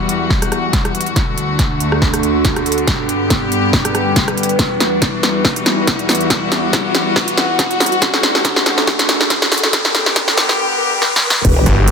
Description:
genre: heavy wobble dubstep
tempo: 140 BPM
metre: 4/4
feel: swing 55% on 16ths, half-time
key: E minor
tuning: A4 = 439 Hz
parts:
  - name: rich chamber string section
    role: sustained chords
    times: 0.0-11.9 s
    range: D2 to G4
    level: -20 LUFS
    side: left 2 dB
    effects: sidechain pumping, low-pass filter
  - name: riser and sub drop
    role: sound effects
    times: 1.0-11.9 s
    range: none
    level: -23 LUFS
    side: equal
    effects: none
  - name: warbly tape-like pad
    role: texture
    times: 0.0-11.9 s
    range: G3 to G5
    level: -21 LUFS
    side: equal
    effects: chorus, built-in reverb, sidechain pumping
  - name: big-room dance drum kit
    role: drums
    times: 0.1-11.9 s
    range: crash cymbal, hi-hat, rim click, snare drum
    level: -16 LUFS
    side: equal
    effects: none
  - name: electronic kick drum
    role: drums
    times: 0.3-11.5 s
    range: none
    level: -19 LUFS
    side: equal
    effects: none
  - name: growl bass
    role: bass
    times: 11.4-11.6 s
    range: E1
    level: -15 LUFS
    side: equal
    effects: chorus, overdrive
  - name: snarling distorted saw bass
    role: bass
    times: 11.7-11.9 s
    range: G1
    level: -11 LUFS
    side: equal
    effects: distortion, overdrive
room: moderate plate reverb, RT60 1.3 s, digital ambience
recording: dense, heavily limited modern master, high-pass filter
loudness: -12 LUFS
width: side -6 dB against mid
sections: 0.0-11.4 A section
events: build-up 0.0-11.4; drum fill 0.0-10.6, 11.0-11.4; filter sweep on string section 0.0-11.4; filter sweep 0.0-11.4; riser 1.0-11.4; impact 11.4-11.9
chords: 0.0 Emadd9; 1.2 D; 2.9 G; 4.6 Emadd9; 8.0 D; 9.7 G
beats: 0.30 0.73 | 1.16 1.59 2.02 2.45 | 2.88 3.30 3.73 4.16 | 4.59 5.02 5.45 5.88 | 6.30 6.73 7.16 7.59 | 8.02 8.45 8.88 9.30 | 9.73 10.16 10.59 11.02 | 11.45 11.88

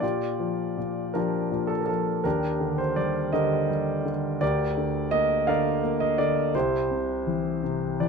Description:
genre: classical, lyrical solo piano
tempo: 55 BPM (dotted quarters)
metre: 6/8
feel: rubato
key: Bb major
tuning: A4 = 441 Hz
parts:
  - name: warm concert grand piano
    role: solo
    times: 0.0-8.1 s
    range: C2 to F5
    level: -23 LUFS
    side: equal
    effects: none
room: light reverb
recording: dark, warm production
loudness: -23 LUFS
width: side -5 dB against mid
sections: 0.0-8.1 A section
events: grand piano fill 7.6-8.1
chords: 0.0 Bb6; 2.3 Ebmaj7; 4.4 Gm/D; 6.5 C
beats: | 0.03 1.15 | 2.25 3.34 | 4.42 5.48 | 6.54 7.63

